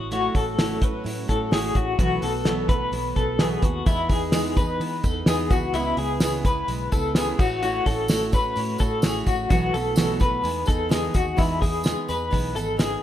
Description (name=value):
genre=jangly indie pop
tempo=128 BPM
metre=4/4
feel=straight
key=E major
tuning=A4 = 439 Hz
part: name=picked steel-string acoustic guitar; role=accompaniment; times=0.0-13.0 s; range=B2 to C#5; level=-29 LUFS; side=right 4 dB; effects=none
part: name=string machine, violas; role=sustained chords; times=0.0-11.4 s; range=C#3 to G#4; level=-36 LUFS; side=equal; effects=ensemble chorus
part: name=electric guitar through a small old amp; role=arpeggios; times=0.0-13.0 s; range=E4 to B4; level=-25 LUFS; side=left 3 dB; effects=tremolo, analog delay
part: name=vintage muted fingered electric bass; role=bass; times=0.0-13.0 s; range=G#1 to E3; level=-32 LUFS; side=equal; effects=none
part: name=cloth-damped thuddy drum kit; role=drums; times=0.1-12.9 s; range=crash cymbal, hi-hat, kick drum, snare drum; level=-24 LUFS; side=equal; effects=none
part: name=tambourine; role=percussion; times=3.9-12.9 s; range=none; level=-40 LUFS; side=right 3 dB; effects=none
room=light reverb, studio reverb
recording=rough home demo mix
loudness=-20 LUFS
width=side -12 dB against mid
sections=0.0-11.4 A section; 11.4-13.0 B section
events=none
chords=0.0 A6; 2.0 B7sus4; 3.9 Emaj7; 5.5 C#m7; 7.4 A6; 9.5 B7sus4; 10.4 Emaj7